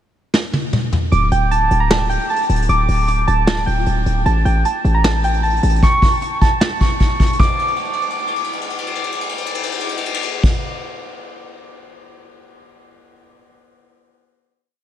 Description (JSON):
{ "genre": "hip hop, trap", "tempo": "153 BPM", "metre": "4/4", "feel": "half-time", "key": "unclear", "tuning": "A4 = 440 Hz", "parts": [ { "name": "vintage brush drum kit", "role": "drums", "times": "0.3-12.0 s", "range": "crash cymbal, hi-hat, kick drum, ride cymbal, snare drum, toms", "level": "-19 LUFS", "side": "equal", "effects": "vintage 12-bit sampler grit" }, { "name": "soft electric-piano-like synth keys", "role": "melody", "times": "1.1-10.5 s", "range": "G5 to D6", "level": "-20 LUFS", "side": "right 2 dB", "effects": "chorus, low-pass filter, analog delay" }, { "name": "hard-hitting 808-style bass", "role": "bass", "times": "1.1-5.8 s", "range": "D1 to A1", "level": "-16 LUFS", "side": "equal", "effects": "none" } ], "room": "light reverb, small room ambience", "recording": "none", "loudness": "-15 LUFS", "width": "side -11 dB against mid", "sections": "0.0-1.1 pickup bar; 1.1-7.4 hook; 7.4-10.5 final note", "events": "drum fill 0.3-1.1, 7.6-10.4", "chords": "0.0 N.C.; 1.1 D5; 4.3 A; 7.4 N.C.", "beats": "0.34 0.73 | 1.12 1.51 1.91 2.30 | 2.69 3.08 3.47 3.87 | 4.26 4.65 5.04 5.43 | 5.83 6.22 6.61 7.00 | 7.39 7.79 8.18 8.57 | 8.96 9.36 9.75 10.14" }